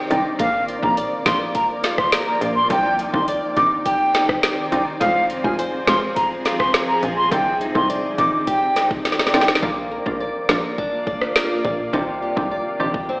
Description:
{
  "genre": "dancehall",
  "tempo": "104 BPM",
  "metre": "4/4",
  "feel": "straight",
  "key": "unclear",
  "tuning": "A4 = 440 Hz",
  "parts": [
    { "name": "granular cloud pad", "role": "sustained chords", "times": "0.0-13.2 s", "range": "Eb3 to D5", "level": "-27 LUFS", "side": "equal", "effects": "built-in reverb, sidechain pumping" },
    { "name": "flamenco guitar", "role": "arpeggios", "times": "0.0-13.2 s", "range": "C3 to D5", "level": "-26 LUFS", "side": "left 1 dB", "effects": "none" },
    { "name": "bright baroque flute", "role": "melody", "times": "0.1-9.5 s", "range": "F5 to D6", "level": "-19 LUFS", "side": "equal", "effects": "analog delay" },
    { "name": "glassy wavetable pluck", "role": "accompaniment", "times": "0.1-13.0 s", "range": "Eb3 to F4", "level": "-25 LUFS", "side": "equal", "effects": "chorus, sidechain pumping" },
    { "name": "plucky analog bass", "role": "bass", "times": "0.1-12.9 s", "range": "F1 to C2", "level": "-26 LUFS", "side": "equal", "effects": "none" },
    { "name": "afro-pop drum kit", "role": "drums", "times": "0.1-13.1 s", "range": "hi-hat, kick drum, rim click, snare drum", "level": "-21 LUFS", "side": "equal", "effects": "overdrive" }
  ],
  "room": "light reverb",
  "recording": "played on a big sound system in a bare room, stone room reverb, AM radio sound",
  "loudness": "-17 LUFS",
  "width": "side -28 dB against mid",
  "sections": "0.0-9.6 A section; 9.6-13.2 B section",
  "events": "break 0.0-0.4; drum fill 9.0-9.6",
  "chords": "0.4 Bb; 2.7 Cmadd9; 5.0 Fm; 7.3 Cmadd9; 9.6 Bb; 11.9 Cmadd9",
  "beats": "| 0.40 0.97 1.55 2.13 | 2.70 3.28 3.86 4.43 | 5.01 5.59 6.17 6.74 | 7.32 7.89 8.47 9.05 | 9.63 10.20 10.78 11.36 | 11.93 12.51 13.09"
}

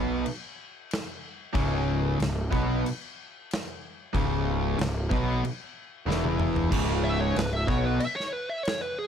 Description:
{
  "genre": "stoner and doom metal",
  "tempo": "93 BPM",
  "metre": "4/4",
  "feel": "straight",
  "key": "C# minor",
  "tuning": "A4 = 440 Hz",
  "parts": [
    { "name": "overdriven electric guitar", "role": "riff", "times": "0.0-8.0 s", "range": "C#2 to B3", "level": "-30 LUFS", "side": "equal", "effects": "none" },
    { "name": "thick fuzz guitar", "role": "riff", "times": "0.0-8.0 s", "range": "C#2 to B3", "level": "-29 LUFS", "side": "left 1 dB", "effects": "distortion" },
    { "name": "fuzz picked electric bass", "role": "bass", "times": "0.0-8.0 s", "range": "C#1 to B1", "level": "-29 LUFS", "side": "equal", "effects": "overdrive, tube saturation" },
    { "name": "big rock drum kit", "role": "drums", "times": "0.3-8.8 s", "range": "crash cymbal, kick drum, snare drum, toms", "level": "-33 LUFS", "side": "equal", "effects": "none" },
    { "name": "fuzz lead guitar", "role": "melody", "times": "7.0-9.1 s", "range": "G#4 to E5", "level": "-30 LUFS", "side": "equal", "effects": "wah, distortion, ping-pong delay" }
  ],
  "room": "light reverb",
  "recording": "dark, warm production",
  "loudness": "-25 LUFS",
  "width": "side -8 dB against mid",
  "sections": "0.0-6.7 A section; 6.7-9.1 B section",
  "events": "drum fill 6.1-6.7; lead electric guitar solo 6.7-9.1",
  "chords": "0.0 C#m",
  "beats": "0.25 0.90 | 1.55 2.19 2.84 3.49 | 4.13 4.78 5.43 6.07 | 6.72 7.36 8.01 8.65"
}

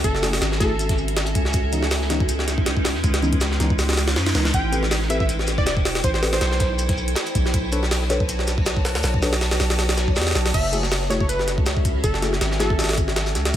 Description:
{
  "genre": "drum and bass, jungle",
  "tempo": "160 BPM",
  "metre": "4/4",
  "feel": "swing 54% on 16ths",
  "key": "F# minor",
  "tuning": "A4 = 440 Hz",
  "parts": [
    { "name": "plucky unison lead", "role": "melody", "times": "0.0-1.0, 4.5-6.9, 10.5-13.0 s", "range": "A4 to G5", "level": "-29 LUFS", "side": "right 1 dB", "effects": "dub echo" },
    { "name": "granular cloud pad", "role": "sustained chords", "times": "0.0-13.6 s", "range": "G#3 to B5", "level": "-27 LUFS", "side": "equal", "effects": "built-in reverb" },
    { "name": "long sustained 808-style bass", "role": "bass", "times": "0.0-13.6 s", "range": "E1 to F#2", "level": "-24 LUFS", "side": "equal", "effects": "none" },
    { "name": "crunchy breakbeat drum kit", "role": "drums", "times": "0.0-13.6 s", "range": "hi-hat, shaker, snare drum", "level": "-33 LUFS", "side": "left 1 dB", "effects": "high-pass filter on hats, studio reverb, high-pass filter on snare, high-pass filter on perc, high-pass filter on room" },
    { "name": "jungle sampler-style drum kit", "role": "drums", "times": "0.0-13.6 s", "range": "crash cymbal, hi-hat, kick drum, snare drum", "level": "-22 LUFS", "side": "equal", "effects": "studio reverb" },
    { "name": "mellow tine electric piano", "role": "stabs", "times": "0.2-12.7 s", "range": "E3 to C#5", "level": "-29 LUFS", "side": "left 3 dB", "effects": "phaser, dub echo" }
  ],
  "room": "studio reverb",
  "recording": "none",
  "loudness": "-18 LUFS",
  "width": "side -11 dB against mid",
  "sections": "0.0-10.5 A section; 10.5-13.6 A section",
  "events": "drop 0.0-10.5, 10.5-13.6",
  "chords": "0.0 F#m9; 1.5 C#m9; 4.5 Am9; 7.5 Bm9; 10.5 F#m9",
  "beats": "| 0.04 0.41 0.79 1.16 | 1.54 1.91 2.29 2.66 | 3.04 3.41 3.79 4.16 | 4.54 4.91 5.29 5.66 | 6.04 6.41 6.79 7.16 | 7.54 7.91 8.29 8.66 | 9.04 9.41 9.79 10.16 | 10.54 10.91 11.29 11.66 | 12.04 12.41 12.79 13.16 | 13.54"
}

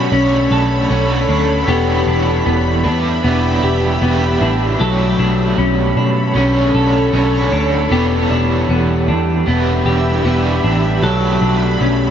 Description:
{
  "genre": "dream pop",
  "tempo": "77 BPM",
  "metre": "4/4",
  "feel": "straight",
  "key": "E dorian",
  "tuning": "A4 = 440 Hz",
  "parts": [
    { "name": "overdriven semi-hollow guitar", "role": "accompaniment", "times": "0.0-12.1 s", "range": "B2 to C#5", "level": "-20 LUFS", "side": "right 3 dB", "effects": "tremolo, lush chorus" },
    { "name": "granular cloud pad", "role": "sustained chords", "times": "0.0-12.1 s", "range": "G4 to B5", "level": "-21 LUFS", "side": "equal", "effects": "built-in reverb" },
    { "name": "semi-hollow electric guitar", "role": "arpeggios", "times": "0.0-12.1 s", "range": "F#3 to A4", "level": "-17 LUFS", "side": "left 2 dB", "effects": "wide subtle chorus, tape echo" },
    { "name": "vintage muted picked electric bass", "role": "bass", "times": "0.0-12.1 s", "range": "E1 to B2", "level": "-18 LUFS", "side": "equal", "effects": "none" }
  ],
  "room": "moderate huge ambient reverb, RT60 6.0 s",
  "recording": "nothing above 7.7 kHz",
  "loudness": "-13 LUFS",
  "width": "side -9 dB against mid",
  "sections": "0.0-12.1 A section",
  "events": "none",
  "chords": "0.0 Bm9; 1.7 Em7; 4.8 Bm9; 7.9 Em7; 11.0 Bm9",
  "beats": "0.12 0.90 | 1.68 2.46 3.24 4.02 | 4.80 5.58 6.36 7.13 | 7.91 8.69 9.47 10.25 | 11.03 11.81"
}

